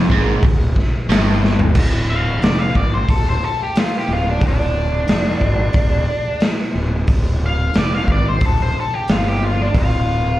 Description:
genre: blues rock power trio and southern rock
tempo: 90 BPM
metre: 4/4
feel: straight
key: D minor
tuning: A4 = 441 Hz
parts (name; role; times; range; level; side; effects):
- biting overdriven guitar; riff; 0.0-1.7 s; D2 to G#2; -19 LUFS; equal; slapback echo
- fuzz fingered electric bass; bass; 0.0-10.4 s; D1 to G#1; -19 LUFS; equal; overdrive
- raw garage drum kit; drums; 0.1-9.9 s; crash cymbal, hi-hat, kick drum, snare drum, toms; -18 LUFS; equal; none
- octave-fuzz lead guitar; melody; 2.1-10.4 s; D4 to F5; -22 LUFS; left 1 dB; distortion, slapback echo
room: light reverb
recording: live gig heard through the venue's PA, club reverb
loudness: -15 LUFS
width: side -15 dB against mid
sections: 0.0-1.8 A section; 1.8-10.4 B section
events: drum fill 1.4-1.8; lead electric guitar solo 1.8-10.4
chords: 0.0 N.C.; 1.8 Dm

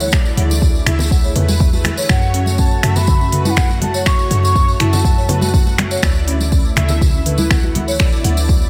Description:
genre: afro house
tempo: 122 BPM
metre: 4/4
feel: straight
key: unclear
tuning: A4 = 440 Hz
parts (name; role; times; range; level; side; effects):
- warm analog pad; sustained chords; 0.0-8.7 s; C#3 to G#4; -30 LUFS; equal; chorus, sidechain pumping
- folk marimba with medium mallets; arpeggios; 0.0-8.6 s; C#4 to F#5; -28 LUFS; equal; sidechain pumping, analog delay
- mellow synth brass; stabs; 0.0-8.7 s; A3 to F#5; -28 LUFS; equal; chorus, sidechain pumping, analog delay
- warm 808-style bass; bass; 0.0-8.7 s; D2 to F#2; -21 LUFS; equal; sidechain pumping
- tambourine; percussion; 0.0-8.7 s; none; -29 LUFS; equal; none
- afro-pop drum kit; drums; 0.1-8.3 s; finger snaps, hi-hat, toms; -23 LUFS; equal; none
- electronic kick drum; drums; 0.1-8.6 s; none; -17 LUFS; equal; none
- congas; percussion; 0.1-8.5 s; none; -26 LUFS; equal; none
- breathy hollow bansuri; melody; 2.1-5.7 s; F#5 to C#6; -24 LUFS; equal; analog delay
room: light reverb, digital ambience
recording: none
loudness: -15 LUFS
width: mono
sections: 0.0-8.7 A section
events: none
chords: 0.0 Dsus2; 2.1 F#m; 6.0 Dsus2

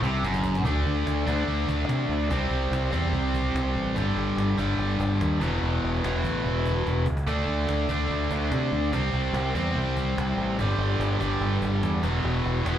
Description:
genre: hard rock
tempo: 145 BPM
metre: 4/4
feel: straight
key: unclear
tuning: A4 = 440 Hz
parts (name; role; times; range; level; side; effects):
- biting overdriven guitar; riff; 0.0-12.8 s; E2 to D4; -26 LUFS; equal; slapback echo
- growling fingered electric bass; bass; 0.0-12.8 s; E1 to C3; -26 LUFS; equal; overdrive
- cajon; drums; 0.0-12.8 s; none; -38 LUFS; equal; none
room: light reverb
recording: live gig heard through the venue's PA, club reverb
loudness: -23 LUFS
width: side -10 dB against mid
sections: 0.7-12.8 A section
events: drum fill 0.0-0.7, 6.9-7.3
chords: 0.0 N.C.; 0.7 D5; 2.3 C5; 4.0 G5; 5.4 E5; 7.3 D5; 8.9 C5; 10.6 G5; 12.0 E5

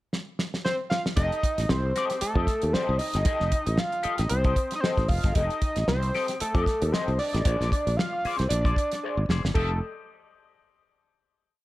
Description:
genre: funk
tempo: 115 BPM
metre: 4/4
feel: swing 56% on 16ths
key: F mixolydian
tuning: A4 = 440 Hz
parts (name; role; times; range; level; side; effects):
- damped 70s drum kit; drums; 0.1-9.7 s; crash cymbal, hi-hat, kick drum, snare drum; -27 LUFS; equal; none
- fat analog lead; melody; 0.6-9.8 s; A4 to F5; -28 LUFS; equal; none
- semi-hollow electric guitar; accompaniment; 1.2-9.7 s; G4 to Eb5; -33 LUFS; left 6 dB; wah, spring reverb
- sustaining fretless electric bass; bass; 1.2-9.8 s; F1 to F2; -27 LUFS; equal; none
room: light reverb, studio ambience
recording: none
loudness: -23 LUFS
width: side -17 dB against mid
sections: 0.0-1.2 pickup bar; 1.2-9.5 groove; 9.5-11.6 final chord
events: drum fill 0.1-1.2, 9.0-9.5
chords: 0.0 N.C.; 1.2 F9; 7.5 Bb9; 9.5 F9

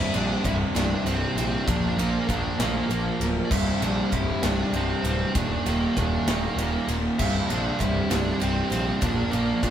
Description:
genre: quiet-loud alternative rock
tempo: 65 BPM (dotted quarters)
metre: 6/8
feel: straight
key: unclear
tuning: A4 = 440 Hz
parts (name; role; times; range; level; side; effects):
- high-gain lead guitar; melody; 0.0-9.7 s; Bb3 to E5; -31 LUFS; equal; distortion
- picked steel-string acoustic guitar; arpeggios; 0.0-9.7 s; C2 to Bb4; -36 LUFS; right 1 dB; none
- crunchy overdriven guitar; riff; 0.0-9.7 s; C2 to Bb3; -28 LUFS; right 4 dB; none
- thick fuzz guitar; riff; 0.0-9.7 s; C2 to Bb3; -31 LUFS; left 5 dB; distortion
- fuzz picked electric bass; bass; 0.1-9.7 s; C1 to Bb1; -28 LUFS; equal; overdrive
- big rock drum kit; drums; 0.1-9.7 s; crash cymbal, kick drum, ride cymbal, snare drum; -29 LUFS; equal; none
room: moderate stone room reverb, RT60 1.2 s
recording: band playing live in one room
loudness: -22 LUFS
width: side -10 dB against mid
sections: 0.0-9.7 A section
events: none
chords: 0.0 C; 1.7 Bb; 3.5 C; 5.4 Eb; 7.2 C; 9.0 Bb

